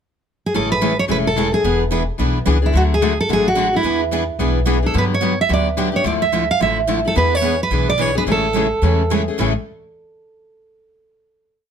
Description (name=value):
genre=acoustic string swing (jazz manouche)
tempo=217 BPM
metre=4/4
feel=swing 58% on 8ths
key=A major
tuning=A4 = 440 Hz
part: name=picked steel-string acoustic guitar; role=melody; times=0.5-9.1 s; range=E4 to F5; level=-18 LUFS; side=right 3 dB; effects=none
part: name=picked steel-string acoustic guitar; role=accompaniment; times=0.5-9.5 s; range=A2 to G#4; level=-22 LUFS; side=left 9 dB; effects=none
part: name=picked steel-string acoustic guitar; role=accompaniment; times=0.5-9.5 s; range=A2 to B4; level=-24 LUFS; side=right 8 dB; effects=none
part: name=upright bass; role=bass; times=0.5-9.5 s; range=E1 to G2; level=-21 LUFS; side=equal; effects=none
room=light reverb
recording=close, detailed microphones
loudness=-15 LUFS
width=side -8 dB against mid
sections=0.0-0.5 pickup bar; 0.5-9.4 A section; 9.4-10.5 final chord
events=none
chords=0.0 N.C.; 0.5 Amaj7; 1.6 E7; 2.7 D; 3.8 E7; 4.9 Gmaj7; 6.1 Dmadd9; 7.2 E7; 8.3 Amaj7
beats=0.26 | 0.54 0.81 1.09 1.36 | 1.64 1.91 2.19 2.46 | 2.74 3.01 3.29 3.56 | 3.84 4.12 4.39 4.67 | 4.95 5.22 5.50 5.78 | 6.05 6.33 6.61 6.89 | 7.16 7.44 7.72 8.00 | 8.27 8.55 8.83 9.11 | 9.38